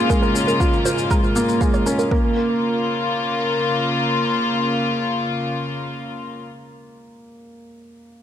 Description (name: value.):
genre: piano and strings electronica.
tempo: 119 BPM.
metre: 4/4.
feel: straight.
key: Bb minor.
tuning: A4 = 440 Hz.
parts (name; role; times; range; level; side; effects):
warm studio string section; sustained chords; 0.0-6.4 s; Ab2 to F4; -22 LUFS; left 2 dB; sidechain pumping.
felt-muted upright piano; riff; 0.0-8.2 s; Ab3 to Ab4; -23 LUFS; right 1 dB; digital delay.
analog pluck; arpeggios; 0.1-2.3 s; Bb4 to F5; -27 LUFS; right 3 dB; chorus, cassette tape, sidechain pumping, digital delay.
electronic kick drum; drums; 0.1-2.2 s; none; -20 LUFS; equal; overdrive.
shaker; drums; 0.1-2.1 s; none; -31 LUFS; left 4 dB; overdrive.
room: light reverb, studio ambience.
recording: none.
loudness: -18 LUFS.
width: side -10 dB against mid.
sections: 0.0-2.1 A section; 2.1-6.1 B section.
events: none.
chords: 0.0 Db6/Ab; 2.1 Bbm.